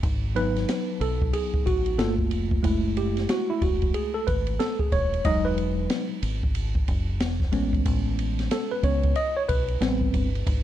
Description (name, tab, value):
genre	hip hop, jazz-hop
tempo	92 BPM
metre	4/4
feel	swing 62% on 16ths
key	unclear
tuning	A4 = 440 Hz
part	deep dub fingered electric bass	bass	0.0-10.6 s	D#1 to C#2	-27 LUFS	equal	none
part	open jazz drum kit	drums	0.0-10.6 s	hi-hat, kick drum, ride cymbal, snare drum	-27 LUFS	equal	none
part	tine electric piano	accompaniment	0.3-10.6 s	F#3 to D#5	-26 LUFS	equal	overdrive, fast stereo tremolo
room	studio reverb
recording	dark, warm production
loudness	-22 LUFS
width	side -12 dB against mid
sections	0.0-10.6 A section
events	tine electric piano solo 0.0-10.6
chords	0.0 G#m7; 2.0 Gm9; 2.6 F#m9; 5.3 Emaj9; 7.5 Amaj9; 9.8 Am7